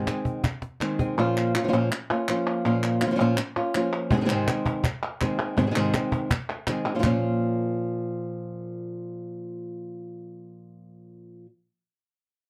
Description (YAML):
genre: flamenco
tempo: 164 BPM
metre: 4/4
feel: straight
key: Bb minor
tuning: A4 = 439 Hz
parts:
  - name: flamenco guitar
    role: melody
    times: 0.0-11.5 s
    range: Ab2 to Ab4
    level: -27 LUFS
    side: equal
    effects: none
  - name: cajon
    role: percussion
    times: 0.1-1.1, 4.1-7.1 s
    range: none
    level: -31 LUFS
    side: equal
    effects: none
  - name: palmas hand claps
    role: percussion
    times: 0.1-7.1 s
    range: none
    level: -34 LUFS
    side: equal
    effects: none
room: light reverb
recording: dark, warm production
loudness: -26 LUFS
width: mono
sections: 0.0-1.2 A section; 1.2-7.0 A section; 7.0-10.0 B section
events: drum fill 0.6-1.2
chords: 0.0 Ab; 1.2 Bbm; 4.1 Ab; 7.0 Bbm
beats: 0.08 0.45 0.81 | 1.18 1.55 1.91 2.28 | 2.65 3.01 3.38 3.75 | 4.11 4.48 4.84 5.21 | 5.57 5.94 6.30 6.67 | 7.04 7.40 7.76 8.13 | 8.50 8.86 9.22 9.59